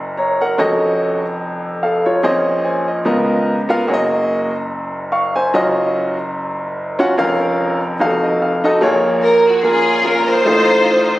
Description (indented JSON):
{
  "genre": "gospel",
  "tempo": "146 BPM",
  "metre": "4/4",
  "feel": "swing 56% on 8ths",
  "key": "Bb minor",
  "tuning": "A4 = 440 Hz",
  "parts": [
    { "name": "clear baby grand piano", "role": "accompaniment", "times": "0.0-11.2 s", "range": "F1 to Db6", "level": "-15 LUFS", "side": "equal", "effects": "none" },
    { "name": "warm studio string section", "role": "melody", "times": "9.2-11.2 s", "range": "Db4 to C5", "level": "-12 LUFS", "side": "equal", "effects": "none" }
  ],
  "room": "wet large studio reverb, RT60 1.4 s",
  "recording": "recorded on a phone in the room, studio reverb, compression",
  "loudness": "-14 LUFS",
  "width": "side -16 dB against mid",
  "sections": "0.0-8.8 A section; 8.8-11.2 B section",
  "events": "grand piano fill 8.0-8.8",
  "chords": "0.0 Gb; 0.6 F7b9b13; 2.2 Bbm11; 3.1 Db13; 3.9 Gb69; 5.5 Ebm9/Gb; 7.2 Bbm/F; 8.0 F7b9; 8.8 Bbm7; 10.5 F7/A",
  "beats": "0.18 | 0.59 1.00 1.41 1.83 | 2.24 2.65 3.06 3.47 | 3.88 4.30 4.71 5.12 | 5.53 5.94 6.36 6.77 | 7.18 7.59 8.00 8.41 | 8.82 9.23 9.64 10.05 | 10.47 10.88"
}